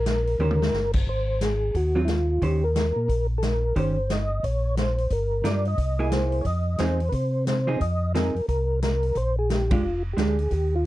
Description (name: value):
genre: soul jazz organ trio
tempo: 178 BPM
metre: 4/4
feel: swing 62% on 8ths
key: Eb major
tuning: A4 = 440 Hz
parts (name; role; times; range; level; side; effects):
- percussive tonewheel organ; melody; 0.0-10.9 s; Fb4 to Eb5; -27 LUFS; equal; slow rotary speaker, chorus vibrato
- mellow tonewheel organ; bass; 0.0-10.9 s; F1 to C3; -25 LUFS; equal; slow rotary speaker
- swinging big-band drum kit; drums; 0.1-10.6 s; crash cymbal, hi-hat, kick drum, ride cymbal, snare drum, toms; -28 LUFS; equal; none
- vintage hollow-body jazz guitar; accompaniment; 0.4-10.4 s; Eb3 to C5; -27 LUFS; right 3 dB; none
room: little or no reverb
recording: none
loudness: -22 LUFS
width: side -16 dB against mid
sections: 0.0-10.9 A section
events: drum fill 0.4-0.7; band accent 9.7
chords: 0.4 Eb6; 1.1 Ab6; 2.4 Eb6; 5.1 Gm7; 5.8 C7alt; 6.5 Fm7; 9.2 Bb6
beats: 0.06 0.40 0.74 | 1.07 1.41 1.75 2.08 | 2.42 2.76 3.09 3.43 | 3.77 4.10 4.44 4.77 | 5.11 5.45 5.78 6.12 | 6.46 6.79 7.13 7.47 | 7.80 8.14 8.48 8.82 | 9.15 9.49 9.83 10.17 | 10.51 10.84